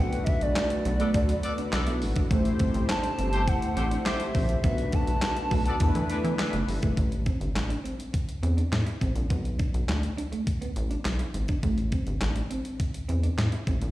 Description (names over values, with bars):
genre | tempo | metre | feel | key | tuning
early-eighties boogie funk | 103 BPM | 4/4 | straight | A dorian | A4 = 440 Hz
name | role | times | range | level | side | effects
hollow clarinet-like synth lead | melody | 0.0-6.1 s | D5 to A5 | -32 LUFS | right 1 dB | chorus, slapback echo, analog delay
mellow synth brass | accompaniment | 0.0-7.0 s | A3 to C5 | -32 LUFS | left 1 dB | chorus, slapback echo
lush unison pad | sustained chords | 0.0-7.0 s | D3 to G4 | -41 LUFS | equal | chorus
clean electric guitar | riff | 0.0-13.8 s | A3 to E4 | -34 LUFS | right 3 dB | lush chorus, slapback echo
rubbery square bass | bass | 0.0-13.9 s | F#1 to E3 | -27 LUFS | equal | none
clean 12-bit digital drum machine | drums | 0.1-13.9 s | handclaps, hi-hat, kick drum, snare drum | -29 LUFS | equal | none
clear horn section | second line | 1.0-6.6 s | E3 to D5 | -34 LUFS | left 1 dB | slapback echo
room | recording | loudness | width
little or no reverb | live gig heard through the venue's PA, recital hall reverb | -24 LUFS | side -16 dB against mid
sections
0.0-7.0 A section; 7.0-13.9 B section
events
none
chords
0.0 Bm7; 2.3 Am7; 4.6 Bm7; 5.8 E7sus4; 7.0 Am; 9.3 Bm7; 11.6 Am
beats
0.56 1.15 1.73 | 2.31 2.89 3.48 4.06 | 4.64 5.22 5.80 6.39 | 6.97 7.55 8.13 8.72 | 9.30 9.88 10.46 11.05 | 11.63 12.21 12.79 13.38